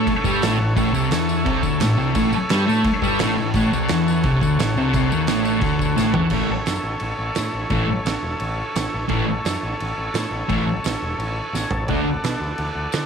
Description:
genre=garage rock duo or trio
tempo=173 BPM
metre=4/4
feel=straight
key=A major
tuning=A4 = 441 Hz
part: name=combo organ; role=sustained chords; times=0.0-13.1 s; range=A4 to A5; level=-26 LUFS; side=equal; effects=none
part: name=thick fuzz guitar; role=riff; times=0.0-12.0 s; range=A2 to D4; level=-20 LUFS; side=left 1 dB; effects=distortion
part: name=growling picked electric bass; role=bass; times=0.0-13.0 s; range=E1 to D3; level=-27 LUFS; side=left 1 dB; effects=overdrive
part: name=oversized low-tuned drum kit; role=drums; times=0.1-13.0 s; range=crash cymbal, kick drum, snare drum, toms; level=-26 LUFS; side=right 3 dB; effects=none
part: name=tambourine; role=percussion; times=0.1-13.0 s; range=none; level=-37 LUFS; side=left 16 dB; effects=none
room=moderate spring reverb, RT60 1.9 s, small room ambience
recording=1960s-style stereo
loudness=-18 LUFS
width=side -6 dB against mid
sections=0.0-6.3 A section; 6.3-13.1 B section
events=transistor combo organ fill 0.2-0.8, 11.2-11.9; drum fill 6.0-6.3, 11.5-11.9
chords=0.0 A; 11.9 D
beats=0.08 0.42 | 0.77 1.12 1.47 1.81 | 2.16 2.51 2.85 3.20 | 3.55 3.89 4.24 4.59 | 4.93 5.28 5.63 5.97 | 6.32 6.67 7.01 7.36 | 7.71 8.06 8.41 8.76 | 9.10 9.45 9.80 10.15 | 10.49 10.84 11.19 11.54 | 11.89 12.23 12.58 12.93

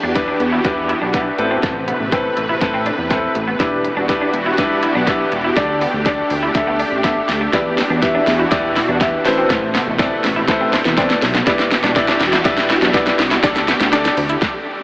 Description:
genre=dance-pop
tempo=122 BPM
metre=4/4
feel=straight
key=E minor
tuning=A4 = 440 Hz
part: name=supersaw pad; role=sustained chords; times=0.0-14.4 s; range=B2 to B4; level=-21 LUFS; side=equal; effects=ensemble chorus, sidechain pumping
part: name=electric guitar through a small old amp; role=riff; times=0.0-14.4 s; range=A3 to E4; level=-23 LUFS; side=right 1 dB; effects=ensemble chorus
part: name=chorused synth bass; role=bass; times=0.0-14.4 s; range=E1 to E2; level=-24 LUFS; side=equal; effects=sidechain pumping
part: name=warm baby grand piano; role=accompaniment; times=0.2-14.2 s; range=C4 to E5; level=-19 LUFS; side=left 1 dB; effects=wide subtle chorus, sidechain pumping
part: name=pop drum kit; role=drums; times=0.2-14.5 s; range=hi-hat, kick drum, shaker, snare drum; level=-19 LUFS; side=equal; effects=none
room=wet huge ambient reverb, RT60 7.7 s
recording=dreamy mix soaked in reverb, AM radio sound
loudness=-14 LUFS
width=side -22 dB against mid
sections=0.0-14.8 A section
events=build-up 0.0-14.8; drum fill 0.0-14.4; stop 14.4-14.8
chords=0.0 Em7; 1.4 Amadd9; 3.6 Em7; 5.6 Dsus4; 7.5 Em7; 9.3 Amadd9; 11.5 Em7; 13.4 Dsus4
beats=0.16 0.65 1.14 | 1.63 2.12 2.62 3.11 | 3.60 4.09 4.58 5.07 | 5.57 6.06 6.55 7.04 | 7.53 8.03 8.52 9.01 | 9.50 9.99 10.48 10.97 | 11.47 11.96 12.45 12.94 | 13.43 13.93 14.42

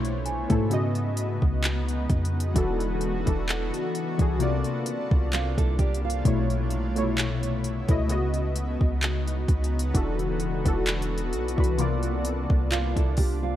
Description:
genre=contemporary R&B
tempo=65 BPM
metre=4/4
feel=swing 54% on 16ths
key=unclear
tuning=A4 = 439 Hz
part: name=warm analog keys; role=accompaniment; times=0.0-13.6 s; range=B2 to D#5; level=-28 LUFS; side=left 2 dB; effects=chorus
part: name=granular cloud pad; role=sustained chords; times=0.0-13.6 s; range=C3 to A4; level=-34 LUFS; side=left 1 dB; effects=built-in reverb
part: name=clean 808-style bass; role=bass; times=0.0-13.6 s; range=E1 to G#2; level=-28 LUFS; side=equal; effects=none
part: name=smooth R&B drum kit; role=drums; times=0.0-13.4 s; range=handclaps, hi-hat, kick drum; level=-26 LUFS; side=equal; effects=overdrive
part: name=celesta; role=texture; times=0.3-4.8, 11.8-13.6 s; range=G#5 to C6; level=-40 LUFS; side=right 4 dB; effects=digital delay
part: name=nylon-string guitar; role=arpeggios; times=5.3-6.5, 12.7-13.6 s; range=C4 to A4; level=-33 LUFS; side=right 9 dB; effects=digital delay
room=little or no reverb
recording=dark, warm production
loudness=-23 LUFS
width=side -12 dB against mid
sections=0.0-13.6 A section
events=none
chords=0.0 B9sus4; 0.7 C#9sus4; 2.6 E9sus4; 4.4 C9sus4; 6.3 B9sus4; 8.1 C#9sus4; 9.9 E9sus4; 11.8 C9sus4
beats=0.71 1.64 | 2.56 3.48 4.41 5.33 | 6.25 7.17 8.10 9.02 | 9.94 10.87 11.79 12.71

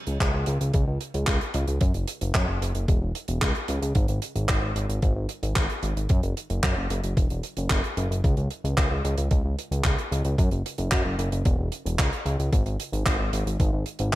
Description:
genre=italo disco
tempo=112 BPM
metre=4/4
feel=straight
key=unclear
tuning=A4 = 440 Hz
part: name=fat analog bass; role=bass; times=0.1-14.1 s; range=E1 to F#2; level=-26 LUFS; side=equal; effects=none
part: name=damped 70s drum kit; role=drums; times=0.1-14.2 s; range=handclaps, hi-hat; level=-30 LUFS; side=right 1 dB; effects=gated reverb
part: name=electronic kick drum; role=drums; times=0.2-13.7 s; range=none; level=-24 LUFS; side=equal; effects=none
room=little or no reverb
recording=none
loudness=-23 LUFS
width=side -16 dB against mid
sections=0.0-14.2 A section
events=none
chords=none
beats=0.20 0.74 1.28 | 1.81 2.35 2.88 3.42 | 3.96 4.49 5.03 5.56 | 6.10 6.63 7.17 7.71 | 8.24 8.78 9.31 9.85 | 10.38 10.92 11.46 11.99 | 12.53 13.06 13.60 14.13

